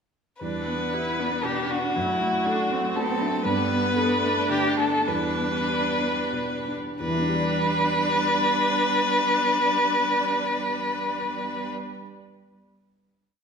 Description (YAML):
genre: neoclassical piano and strings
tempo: 86-121 BPM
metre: 3/4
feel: rubato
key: E minor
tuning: A4 = 440 Hz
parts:
  - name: rich violin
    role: melody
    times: 0.4-11.7 s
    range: F#4 to B4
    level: -24 LUFS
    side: left 2 dB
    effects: none
  - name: warm cello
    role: second line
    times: 0.4-11.7 s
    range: F#3 to B3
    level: -32 LUFS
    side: right 5 dB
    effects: none
  - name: felt-muted upright piano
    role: accompaniment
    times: 0.4-12.0 s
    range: E2 to D5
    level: -30 LUFS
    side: left 2 dB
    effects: none
  - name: rich viola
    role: accompaniment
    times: 0.4-11.7 s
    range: B3 to E4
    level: -30 LUFS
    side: right 2 dB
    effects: none
  - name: rich chamber string section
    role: sustained chords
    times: 0.4-11.7 s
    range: G3 to D5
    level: -37 LUFS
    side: right 2 dB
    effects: none
room: wet recital hall reverb, RT60 1.6 s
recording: recorded in a church or concert hall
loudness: -22 LUFS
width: side -6 dB against mid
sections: 0.4-7.0 theme; 7.0-11.2 final chord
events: slowing down 2.7-7.0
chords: 0.4 Em7; 2.0 D/F#; 3.5 Gadd9; 5.1 Em7